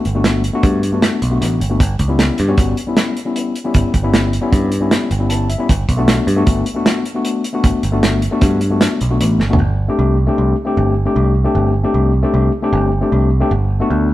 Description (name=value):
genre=progressive instrumental, band music in an uneven meter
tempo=154 BPM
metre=5/4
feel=straight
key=G major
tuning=A4 = 440 Hz
part: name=overdriven tine electric piano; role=accompaniment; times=0.0-14.1 s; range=G3 to A5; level=-18 LUFS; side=left 3 dB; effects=none
part: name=picked electric bass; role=bass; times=0.1-14.1 s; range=G1 to G2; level=-16 LUFS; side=right 1 dB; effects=none
part: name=warm soul drum kit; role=drums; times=0.1-9.6 s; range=hi-hat, kick drum, snare drum, toms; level=-16 LUFS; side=right 1 dB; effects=none
room=moderate stone room reverb, RT60 1.2 s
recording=band playing live in one room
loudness=-13 LUFS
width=side -15 dB against mid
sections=0.0-9.6 A section; 9.6-14.1 B section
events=tine electric piano fill 5.1-5.7; drum fill 9.4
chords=0.0 Gmaj7; 1.8 A9/G (rootless); 5.7 Gmaj7; 9.6 Gsus24; 13.5 Gmaj9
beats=0.24 0.63 1.02 1.41 | 1.80 2.19 2.58 2.97 3.36 | 3.75 4.14 4.53 4.91 5.30 | 5.69 6.08 6.47 6.86 7.25 | 7.64 8.03 8.42 8.81 9.20 | 9.59 9.98 10.37 10.77 11.16 | 11.55 11.94 12.33 12.72 13.12 | 13.51 13.90